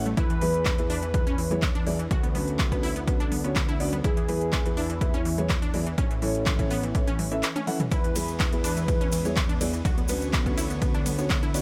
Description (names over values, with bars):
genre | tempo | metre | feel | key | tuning
progressive house | 124 BPM | 4/4 | straight | E mixolydian | A4 = 440 Hz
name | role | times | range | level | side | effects
dark concert grand piano | stabs | 0.0-11.6 s | B3 to F#5 | -34 LUFS | equal | sidechain pumping, delay
fat analog bass | bass | 0.0-11.6 s | A1 to E2 | -34 LUFS | equal | sidechain pumping
unison pluck | arpeggios | 0.1-11.6 s | E3 to F#4 | -35 LUFS | equal | sidechain pumping, delay
deep house drum kit | drums | 0.1-11.6 s | handclaps, hi-hat, ride cymbal, toms | -35 LUFS | equal | sidechain pumping on hats, sidechain pumping on toms, sidechain pumping on cymbals
congas | percussion | 0.1-11.5 s | none | -39 LUFS | equal | none
warm velvety synth lead | melody | 0.2-9.3 s | E4 to B4 | -35 LUFS | equal | chorus, sidechain pumping, tape echo
electronic kick drum | drums | 0.2-11.4 s | none | -29 LUFS | equal | overdrive
airy breathy pad | sustained chords | 7.9-11.6 s | D3 to C#5 | -38 LUFS | equal | none
tube shaker | percussion | 7.9-11.6 s | none | -41 LUFS | equal | none
room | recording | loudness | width
digital ambience | none | -26 LUFS | mono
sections
0.0-11.6 A section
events
drum fill 7.6-7.9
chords
0.2 E; 2.1 Bmadd9/D; 4.0 E; 6.0 A; 7.9 E; 9.8 Bmadd9/D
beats
| 0.17 0.66 1.14 1.62 | 2.11 2.59 3.08 3.56 | 4.04 4.53 5.01 5.50 | 5.98 6.46 6.95 7.43 | 7.92 8.40 8.88 9.37 | 9.85 10.33 10.82 11.30